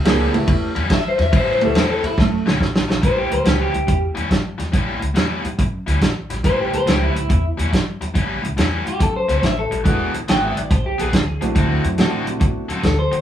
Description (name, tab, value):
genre	electric blues shuffle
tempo	141 BPM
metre	4/4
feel	swing 67% on 8ths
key	A mixolydian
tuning	A4 = 440 Hz
part	warm upright piano	accompaniment	0.0-1.7, 9.8-12.6 s	G#3 to G#4	-22 LUFS	right 3 dB	none
part	upright bass	bass	0.0-13.2 s	E1 to C3	-23 LUFS	equal	none
part	overdriven electric guitar	riff	0.1-13.2 s	A2 to A4	-25 LUFS	left 2 dB	none
part	warm soul drum kit	drums	0.1-13.2 s	hi-hat, kick drum, ride cymbal, snare drum	-19 LUFS	equal	none
part	electric guitar through a small old amp	melody	0.9-13.2 s	A3 to G5	-21 LUFS	left 1 dB	spring reverb
room	wet studio reverb, RT60 0.5 s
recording	band playing live in one room, small room ambience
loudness	-16 LUFS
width	side -10 dB against mid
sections	0.0-3.0 A section; 3.0-13.2 B section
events	clean electric guitar solo 0.0-3.0; drum fill 2.2-3.0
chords	0.0 A7; 9.9 E7; 11.6 D7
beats	0.06 0.48 0.91 | 1.33 1.75 2.18 2.60 | 3.03 3.46 3.88 4.31 | 4.74 5.16 5.59 6.02 | 6.44 6.87 7.30 7.72 | 8.15 8.58 9.00 9.43 | 9.86 10.28 10.71 11.13 | 11.56 11.98 12.41 12.84